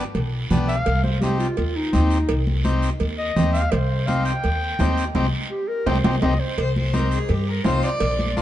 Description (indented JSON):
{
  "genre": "latin, cumbia",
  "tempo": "168 BPM",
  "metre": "4/4",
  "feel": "straight",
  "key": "C harmonic minor",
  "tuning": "A4 = 440 Hz",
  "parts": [
    { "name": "combo organ", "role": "accompaniment", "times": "0.0-8.4 s", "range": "B3 to Bb4", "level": "-27 LUFS", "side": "left 2 dB", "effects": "none" },
    { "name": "upright bass", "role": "bass", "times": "0.1-8.4 s", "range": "Bb1 to G2", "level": "-22 LUFS", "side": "equal", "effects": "none" },
    { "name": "cowbell and timbales", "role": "percussion", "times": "0.1-8.2 s", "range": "none", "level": "-30 LUFS", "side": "right 4 dB", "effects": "none" },
    { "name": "guiro", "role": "percussion", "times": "0.1-8.4 s", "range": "none", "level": "-36 LUFS", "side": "right 4 dB", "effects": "none" },
    { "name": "congas", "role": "percussion", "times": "0.5-8.4 s", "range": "none", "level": "-26 LUFS", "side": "right 1 dB", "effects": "none" },
    { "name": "mellow clarinet", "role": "melody", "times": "0.7-6.6 s", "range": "Eb4 to G5", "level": "-27 LUFS", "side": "left 1 dB", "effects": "none" },
    { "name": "clear cello", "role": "second line", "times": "6.6-8.4 s", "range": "G4 to D5", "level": "-26 LUFS", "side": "left 1 dB", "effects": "none" }
  ],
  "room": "light reverb",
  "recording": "heard from further back in the room, nothing above 10.8 kHz",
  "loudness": "-19 LUFS",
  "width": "side -12 dB against mid",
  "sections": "0.0-6.6 A section; 6.6-8.4 B section",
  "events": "clarinet solo 0.0-6.6; band accent 5.2-6.6; drum fill 6.0-6.6; cello solo 6.6-8.4",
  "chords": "0.0 G7; 0.9 Cm"
}